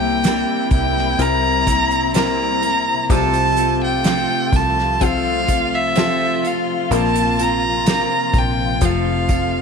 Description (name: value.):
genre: pop ballad.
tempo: 63 BPM.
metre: 4/4.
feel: straight.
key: F major.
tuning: A4 = 440 Hz.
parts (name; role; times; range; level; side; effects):
rich violin; melody; 0.0-9.6 s; E5 to Bb5; -19 LUFS; equal; slapback echo.
warm baby grand piano; accompaniment; 0.0-9.6 s; C3 to Bb4; -25 LUFS; left 12 dB; none.
dark studio string section; sustained chords; 0.0-9.6 s; C3 to F4; -24 LUFS; left 14 dB; none.
picked steel-string acoustic guitar; arpeggios; 0.0-9.6 s; C3 to Bb4; -24 LUFS; right 14 dB; none.
fingered electric bass; bass; 0.0-9.6 s; F1 to C2; -24 LUFS; equal; none.
unplugged drum kit; drums; 0.2-9.5 s; hi-hat, kick drum, snare drum; -20 LUFS; equal; none.
room: light reverb, studio reverb.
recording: 1960s-style stereo with parts hard left and right.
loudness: -15 LUFS.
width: side -5 dB against mid.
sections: 0.0-9.6 A section.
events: none.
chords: 0.0 C7; 3.1 F/C; 6.9 Bbsus2; 8.8 F.